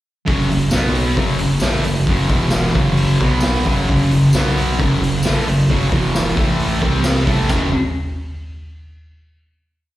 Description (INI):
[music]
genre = garage rock duo or trio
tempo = 133 BPM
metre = 4/4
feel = straight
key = F# minor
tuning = A4 = 440 Hz
[part]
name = thick fuzz guitar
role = riff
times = 0.3-7.7 s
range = E2 to C4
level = -17 LUFS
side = equal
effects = distortion, slapback echo
[part]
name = mellow tine electric piano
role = bass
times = 0.3-7.7 s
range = E1 to C2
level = -22 LUFS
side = equal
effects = overdrive, phaser
[part]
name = raw garage drum kit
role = drums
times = 0.3-7.6 s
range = crash cymbal, hi-hat, kick drum, snare drum, toms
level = -19 LUFS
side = equal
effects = none
[part]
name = tambourine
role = percussion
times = 0.7-7.7 s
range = none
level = -32 LUFS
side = left 2 dB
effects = none
[sound]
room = light reverb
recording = live gig heard through the venue's PA, recital hall reverb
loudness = -14 LUFS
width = side -15 dB against mid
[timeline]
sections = 0.3-7.5 riff; 7.5-9.3 final chord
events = none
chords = 0.3 F#5; 0.7 B5; 1.2 F#m; 2.3 E5; 2.7 F#5; 3.2 B5; 3.7 F#5; 4.3 B5; 4.8 F#m; 5.9 E5; 6.4 A5; 6.8 C5; 7.3 A5; 7.5 F#5